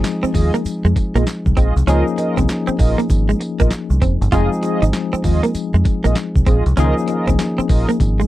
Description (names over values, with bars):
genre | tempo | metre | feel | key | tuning
R&B, new jack swing | 98 BPM | 4/4 | swing 64% on 16ths | F minor | A4 = 440 Hz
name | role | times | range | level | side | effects
bell-like tine electric piano | accompaniment | 0.0-8.3 s | Eb3 to Ab4 | -21 LUFS | left 4 dB | medium stereo tremolo
dusty soul sampler-style drum kit | drums | 0.0-8.2 s | handclaps, hi-hat, kick drum, snare drum, tambourine | -19 LUFS | equal | none
tube shaker | percussion | 0.0-8.3 s | none | -43 LUFS | right 13 dB | none
direct-recorded clean electric guitar | riff | 0.2-8.3 s | Ab3 to F4 | -21 LUFS | right 4 dB | lush chorus
deep dub fingered electric bass | bass | 0.2-8.2 s | F1 to F2 | -16 LUFS | equal | none
mellow synth brass | stabs | 0.3-7.9 s | F4 to Eb5 | -23 LUFS | right 3 dB | chorus
room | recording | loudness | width
little or no reverb | dry, close 1970s-style studio recording | -14 LUFS | side -15 dB against mid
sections
0.0-8.3 A section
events
none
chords
0.0 Fm7; 1.9 Db69; 4.3 Fm7; 6.8 Db69